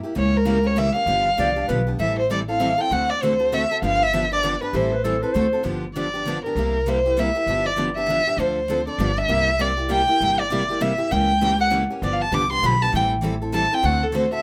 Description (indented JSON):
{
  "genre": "acoustic string swing (jazz manouche)",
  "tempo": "197 BPM",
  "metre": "3/4",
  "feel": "swing 60% on 8ths",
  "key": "G mixolydian",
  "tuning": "A4 = 439 Hz",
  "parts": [
    { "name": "picked steel-string acoustic guitar", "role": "accompaniment", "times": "0.0-14.4 s", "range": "C3 to A4", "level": "-29 LUFS", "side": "equal", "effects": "none" },
    { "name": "warm violin", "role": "melody", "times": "0.2-14.4 s", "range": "A4 to D6", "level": "-23 LUFS", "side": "equal", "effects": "none" },
    { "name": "picked steel-string acoustic guitar", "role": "accompaniment", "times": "0.2-14.2 s", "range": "C3 to A4", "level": "-34 LUFS", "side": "equal", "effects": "none" },
    { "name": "upright bass", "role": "bass", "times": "0.2-14.4 s", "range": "G1 to D2", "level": "-28 LUFS", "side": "equal", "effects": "none" },
    { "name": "clear clarinet", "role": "second line", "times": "1.4-1.9, 4.7-5.6 s", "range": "G4 to D5", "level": "-27 LUFS", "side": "equal", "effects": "none" }
  ],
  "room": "moderate club reverb, RT60 0.7 s",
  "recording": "none",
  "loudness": "-21 LUFS",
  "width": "mono",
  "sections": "0.0-5.6 A section; 5.6-14.4 B section",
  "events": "violin solo 5.6-14.4",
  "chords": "0.2 C#dim7; 1.1 G7; 2.0 Am7; 2.9 D7; 3.8 G7; 4.7 Am7; 5.3 D7; 5.6 G7; 6.6 C7; 7.5 G7; 8.4 Dm7; 9.0 G7; 9.3 C7; 11.1 C#dim7; 12.0 G7; 12.9 Am7; 13.8 D7"
}